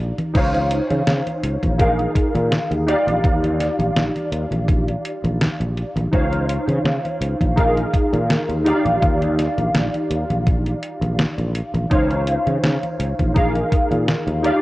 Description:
vaporwave; 83 BPM; 4/4; swing 54% on 16ths; Eb major; A4 = 439 Hz
warbly lo-fi synth keys; accompaniment; 0.0-14.6 s; Eb4 to F5; -21 LUFS; equal; ensemble chorus, analog delay
sustaining fretless electric bass; bass; 0.0-14.5 s; Bb1 to Db3; -22 LUFS; equal; tube saturation
detuned 8-bit digital drum machine; drums; 0.2-14.6 s; congas, crash cymbal, hi-hat, snare drum; -24 LUFS; equal
electronic kick drum; drums; 0.3-13.9 s; -19 LUFS; equal
digital ambience; worn, warbling old tape, cassette tape, warbly pitch drift; -17 LUFS; side -18 dB against mid
0.3-14.6 A section
0.3 Dbmaj9; 1.8 Bb7sus4; 2.9 Ebmaj9; 6.1 Dbmaj9; 7.6 Bb7sus4; 8.7 Ebmaj9; 11.9 Dbmaj9; 13.4 Bb7sus4

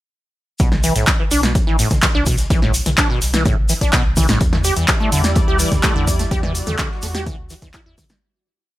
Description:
acid house; 126 BPM; 4/4; straight; B minor; A4 = 437 Hz
liquid acid bass; riff; 0.6-8.1 s; A2 to G4; -21 LUFS; equal; phaser, tube saturation, lush chorus, cassette tape, sidechain pumping
warm sub bass; bass; 0.6-7.9 s; A1 to E2; -22 LUFS; equal; sidechain pumping
electronic kick drum; drums; 0.6-8.1 s; -18 LUFS; equal; overdrive
punchy analog drum machine; drums; 0.6-8.2 s; handclaps, hi-hat, snare drum, toms; -20 LUFS; equal; overdrive
warm soul drum kit; drums; 0.6-8.1 s; hi-hat, snare drum; -34 LUFS; right 2 dB
tube shaker; percussion; 0.6-8.2 s; -27 LUFS; left 2 dB
lush unison pad; sustained chords; 4.4-8.2 s; G3 to D5; -26 LUFS; equal; chorus, phaser, sidechain pumping
studio ambience; -14 LUFS; side -16 dB against mid
0.6-8.2 drop
drop 0.6-8.2; fade-out 5.7-8.2
0.6 B7(no3); 4.4 Em7

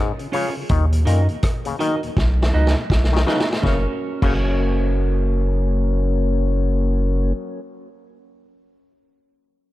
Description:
roots reggae; 82 BPM; 4/4; swing 61% on 16ths; F# major; A4 = 440 Hz
auto-wah clav; arpeggios; 0.0-4.3 s; G#2 to D#3; -27 LUFS; left 7 dB
tonewheel organ; accompaniment; 0.2-7.3 s; D#2 to D#4; -27 LUFS; left 3 dB; slow rotary speaker, tape echo
vintage drum kit; drums; 0.2-4.4 s; crash cymbal, hi-hat, kick drum, rim click, snare drum; -22 LUFS; equal
clean electric guitar; accompaniment; 0.3-8.1 s; C#4 to D#5; -27 LUFS; right 3 dB; tape echo
soft dub sub bass; bass; 0.7-7.3 s; F#1 to F#2; -18 LUFS; equal
small room reverb; echo-heavy mix; -17 LUFS; side -16 dB against mid
0.0-3.6 A section; 3.6-6.6 B section
drum fill 2.2-3.6
0.0 C#; 0.7 D#m; 2.2 B; 3.6 F#

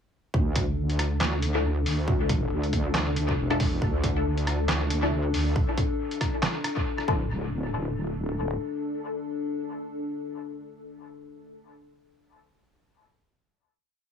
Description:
deep dubstep; 138 BPM; 4/4; swing 56% on 16ths, half-time; D minor; A4 = 440 Hz
dark analog pad; sustained chords; 0.3-11.6 s; D4 to A4; -32 LUFS; left 3 dB; chorus, vintage 12-bit sampler grit
wobble bass; bass; 0.3-8.6 s; D1 to D2; -27 LUFS; right 1 dB; chorus
electronic kick drum; drums; 0.3-7.2 s; -27 LUFS; equal
trip hop sampler-style drum kit; drums; 0.6-7.1 s; handclaps, hi-hat, rim click, snare drum; -31 LUFS; right 1 dB; dub echo
filtered dub chord stab; stabs; 1.5-11.6 s; F3 to A4; -32 LUFS; left 4 dB; phaser, dub echo
little or no reverb; echo-heavy mix; -25 LUFS; side -7 dB against mid
0.3-7.3 drop; 7.3-10.8 final hit
drop 0.3-7.3
0.3 Dmadd9

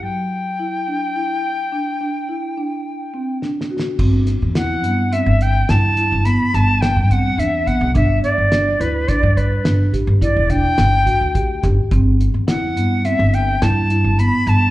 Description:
progressive instrumental, band music in an uneven meter; 106 BPM; 7/4; straight; A4 = 440 Hz
silver concert flute; melody; 0.0-14.7 s; B4 to B5; -20 LUFS; left 1 dB; slapback echo
marimba with medium mallets; arpeggios; 0.0-14.7 s; F#3 to G4; -23 LUFS; right 1 dB
cloth-damped thuddy drum kit; drums; 3.4-14.6 s; crash cymbal, hi-hat, kick drum, snare drum; -22 LUFS; equal
upright bass; bass; 4.0-14.7 s; E1 to G2; -17 LUFS; equal
light reverb, studio reverb; live gig heard through the venue's PA, club reverb; -15 LUFS; side -16 dB against mid
0.0-4.0 A section; 4.0-14.7 B section
break 0.0-4.0; drum fill 3.4-4.0
0.0 G5; 4.0 Cmaj7/G; 8.0 G; 11.9 Cmaj7/G

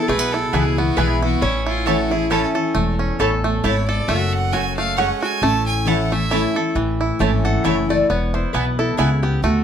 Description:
bluegrass; 135 BPM; 3/4; swing 55% on 8ths; A major; A4 = 439 Hz
clear fiddle; melody; 0.0-6.6 s; E4 to A5; -25 LUFS; right 3 dB; tape echo
lap resonator guitar; second line; 0.0-9.6 s; C#4 to F#5; -25 LUFS; left 3 dB
picked steel-string acoustic guitar; accompaniment; 0.0-9.6 s; E2 to E4; -23 LUFS; left 3 dB
bluegrass banjo; arpeggios; 0.0-9.6 s; E3 to A4; -24 LUFS; right 3 dB
upright bass; bass; 0.1-9.6 s; E1 to D2; -22 LUFS; equal
mandolin; stabs; 0.5-9.1 s; A3 to A5; -23 LUFS; right 4 dB
moderate small room reverb, RT60 0.6 s; -17 LUFS; side -8 dB against mid
0.0-6.8 A section; 6.8-9.6 B section
resonator guitar played with a steel bar solo 6.8-9.6
0.0 E; 1.4 A; 4.1 F#m; 5.4 A; 8.1 E

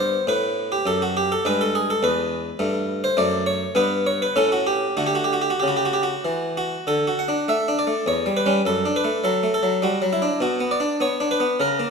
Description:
classical, baroque-style suite movement for harpsichord; 93-107 BPM; 3/4; rubato; G major, D major from 3.2 s; A4 = 442 Hz
harpsichord; solo; 0.0-11.9 s; E2 to F#5; -19 LUFS; equal
moderate scoring stage reverb, RT60 1.7 s; minimal, uncompressed stereo recording; -19 LUFS; side -5 dB against mid
0.0-6.9 A section; 6.9-11.9 B section
0.0 G; 1.4 E/G; 2.6 Gadd9; 3.2 D/F#; 3.8 G; 4.4 A; 5.0 D5; 6.9 D; 8.1 C#dim/E; 8.7 D/F#; 10.4 Bm

